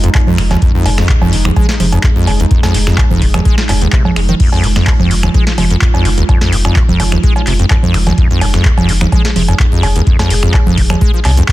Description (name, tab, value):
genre	acid house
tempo	127 BPM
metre	4/4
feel	straight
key	F minor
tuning	A4 = 440 Hz
part	dark analog pad	sustained chords	0.0-11.5 s	Ab3 to Ab4	-22 LUFS	right 2 dB	chorus, sidechain pumping
part	acid bass, saw	riff	0.0-11.5 s	Eb2 to Ab3	-15 LUFS	equal	analog chorus, sidechain pumping, ping-pong delay
part	warm sub bass	bass	0.0-11.4 s	F1 to C2	-14 LUFS	equal	sidechain pumping
part	booming analog drum machine	drums	0.0-11.5 s	congas, cowbell, crash cymbal, finger snaps, handclaps, hi-hat, snare drum	-16 LUFS	right 2 dB	soft clipping on snare
part	electronic kick drum	drums	0.1-11.5 s	none	-12 LUFS	equal	none
room	little or no reverb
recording	dense, heavily limited modern master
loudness	-9 LUFS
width	side -16 dB against mid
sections	0.0-11.5 A section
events	none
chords	0.0 Fm7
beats	0.15 | 0.62 1.09 1.56 2.04 | 2.51 2.98 3.45 3.93 | 4.40 4.87 5.34 5.82 | 6.29 6.76 7.23 7.71 | 8.18 8.65 9.12 9.60 | 10.07 10.54 11.01 11.49